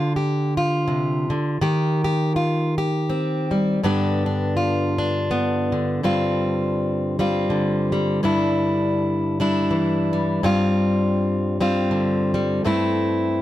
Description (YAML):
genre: folk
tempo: 82 BPM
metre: 3/4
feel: swing 57% on 8ths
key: G mixolydian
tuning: A4 = 439 Hz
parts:
  - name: fingerpicked plugged-in steel-string acoustic guitar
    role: solo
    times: 0.0-13.4 s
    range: G2 to G4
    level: -19 LUFS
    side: equal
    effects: none
room: light reverb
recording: close, detailed microphones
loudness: -19 LUFS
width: side -14 dB against mid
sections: 0.0-6.0 A section; 6.0-13.4 B section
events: none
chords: 0.0 Dm; 1.6 Cm/Eb; 3.8 G; 6.0 G7sus4; 8.2 Em7/G; 10.4 G7sus4; 12.7 Fmaj7/G (rootless)